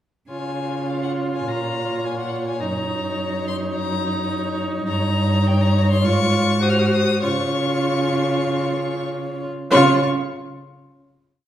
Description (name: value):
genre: quick classical-period movement for string quartet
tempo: 95-106 BPM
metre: 4/4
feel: rubato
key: Db major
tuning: A4 = 442 Hz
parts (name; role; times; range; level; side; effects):
- rich violin; melody; 0.3-10.1 s; F5 to F6; -28 LUFS; left 5 dB; none
- clear violin; second line; 0.3-10.1 s; C5 to Db5; -26 LUFS; left 2 dB; none
- rich viola; accompaniment; 0.3-10.0 s; Eb4 to Gb4; -24 LUFS; right 1 dB; none
- warm cello; bass; 0.3-10.1 s; Gb2 to Db3; -22 LUFS; right 1 dB; none
room: wet recital hall reverb, RT60 1.4 s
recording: heard from further back in the room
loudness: -18 LUFS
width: side -11 dB against mid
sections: 0.3-9.7 A section; 9.7-11.5 final chord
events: none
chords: 0.3 Db; 1.5 Bbm; 2.6 Ebm7/Gb; 4.9 Eb7/G; 6.0 Db/Ab; 6.6 Ab7; 7.2 Db